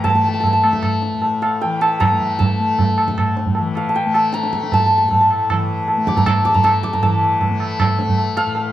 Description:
indian classical, Hindustani; 155 BPM; 3/4; straight; A raga bhairavi; A4 = 439 Hz
santur; melody; 0.0-8.7 s; C5 to D6; -18 LUFS; equal
tanpura; drone; 0.0-8.7 s; A2 to A3; -24 LUFS; left 4 dB
tabla; percussion; 0.0-8.7 s; -19 LUFS; right 2 dB
moderate recital hall reverb, RT60 1.6 s; close, detailed microphones; -15 LUFS; side -13 dB against mid
0.0-7.0 A section; 7.0-8.7 B section
speeding up 0.0-8.7

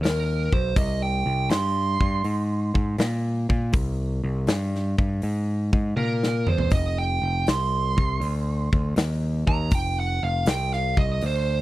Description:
blues rock power trio and southern rock; 80 BPM; 4/4; swing 68% on 8ths; C minor; A4 = 440 Hz
smooth overdriven lead guitar; second line; 0.0-11.6 s; Bb4 to C6; -27 LUFS; right 4 dB
overdriven picked electric bass; bass; 0.0-11.6 s; F1 to Bb2; -24 LUFS; equal
big rock drum kit; drums; 0.0-11.5 s; hi-hat, kick drum, snare drum, toms; -25 LUFS; equal
little or no reverb; dry, close 1970s-style studio recording; -21 LUFS; side -16 dB against mid
0.0-11.6 A section
lead electric guitar solo 0.0-11.6; drum fill 6.0-6.7
0.0 N.C.; 0.8 C5; 6.7 F5

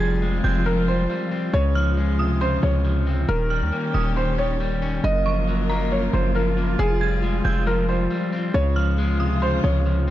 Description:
hip hop; 137 BPM; 4/4; half-time; F minor; A4 = 440 Hz
felt-muted upright piano; melody; 0.0-10.1 s; Ab4 to Eb5; -27 LUFS; right 1 dB; low-pass filter, digital delay
dark detuned synth bell; second line; 0.0-9.4 s; Bb5 to Ab6; -32 LUFS; right 4 dB; chorus, tremolo, digital delay
electric guitar at the edge of break-up; accompaniment; 0.0-10.1 s; Gb2 to Db4; -25 LUFS; left 2 dB; low-pass filter
dark chamber string section; sustained chords; 0.0-10.1 s; Eb3 to Bb4; -30 LUFS; left 1 dB
hard-hitting 808-style bass; bass; 0.0-10.1 s; Eb1 to Eb2; -22 LUFS; equal
light reverb, studio reverb; dark, warm production, nothing above 8.0 kHz; -19 LUFS; side -13 dB against mid
0.0-10.1 A section
0.0 Fmadd9; 1.5 Dbmaj7; 3.3 Eb7; 5.0 Gbmaj7; 6.8 Fmadd9; 8.5 Dbmaj7

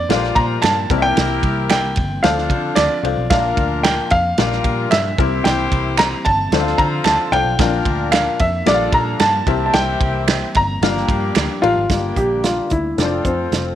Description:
uptempo 1960s-style soul; 112 BPM; 4/4; straight; G dorian; A4 = 440 Hz
warm baby grand piano; melody; 0.0-13.8 s; C4 to Bb5; -19 LUFS; equal
mellow tonewheel organ; sustained chords; 0.0-13.8 s; D3 to F4; -30 LUFS; equal; chorus vibrato, lush chorus
vintage muted picked electric bass; bass; 0.0-13.7 s; F1 to D3; -23 LUFS; equal
warm horn section; second line; 0.1-13.8 s; Bb3 to C5; -25 LUFS; left 1 dB
clear upright piano; accompaniment; 0.1-13.7 s; G2 to A5; -23 LUFS; left 12 dB
warm soul drum kit; drums; 0.1-13.7 s; hi-hat, kick drum, ride cymbal, snare drum; -20 LUFS; right 3 dB
finger snaps; percussion; 0.6-11.5 s; -26 LUFS; right 10 dB
light reverb, studio reverb; 1960s-style stereo with parts hard left and right; -15 LUFS; side -11 dB against mid
0.0-11.9 A section; 11.9-13.8 B section
0.1 Gm7/Bb; 0.9 C7; 2.2 Dm7; 3.3 Bbmaj7; 4.4 Gm7/Bb; 5.2 C7; 6.5 Dm7; 7.6 Bbmaj7; 8.7 Gm7/Bb; 9.5 C7; 10.8 Gm7; 11.9 Gm; 13.0 F

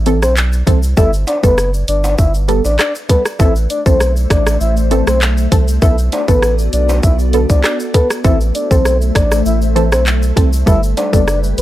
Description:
dancehall; 99 BPM; 4/4; straight; A dorian; A4 = 440 Hz
saturated sub bass; bass; 0.0-11.6 s; F#1 to C2; -15 LUFS; equal
punchy chord stab; accompaniment; 0.1-11.2 s; D3 to A4; -17 LUFS; equal; chorus
island pop drum kit; drums; 0.1-11.6 s; handclaps, hi-hat, kick drum, rim click, shaker; -14 LUFS; equal
egg shaker and timbales; percussion; 0.1-11.6 s; -30 LUFS; equal
soft octave-layered synth lead; melody; 0.2-11.6 s; B4 to E5; -18 LUFS; left 1 dB; chorus, tremolo, analog delay
glassy FM pad; sustained chords; 3.7-11.6 s; G3 to E5; -22 LUFS; left 2 dB; ensemble chorus, built-in reverb, sidechain pumping
little or no reverb; dry, gritty hardware recording; -11 LUFS; side -14 dB against mid
0.0-11.6 A section
0.0 Am; 1.0 Gadd9; 3.4 Am; 5.8 Bm7; 8.2 Am; 10.7 Gadd9

